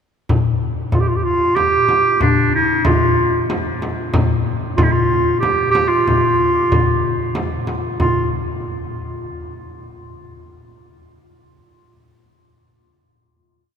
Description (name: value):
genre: Arabic maqam ensemble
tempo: 94 BPM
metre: 3/4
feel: straight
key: unclear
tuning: A4 = 440 Hz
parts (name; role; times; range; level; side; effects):
- darbuka; percussion; 0.3-8.3 s; none; -22 LUFS; left 4 dB; none
- frame drum; percussion; 0.3-8.3 s; none; -22 LUFS; right 1 dB; none
- clear clarinet; melody; 0.9-8.3 s; D4 to G4; -17 LUFS; right 2 dB; none
room: wet cathedral reverb, RT60 5.8 s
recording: recorded in a church or concert hall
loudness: -14 LUFS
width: side -7 dB against mid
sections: 0.3-8.0 A section; 8.0-9.9 final note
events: none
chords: none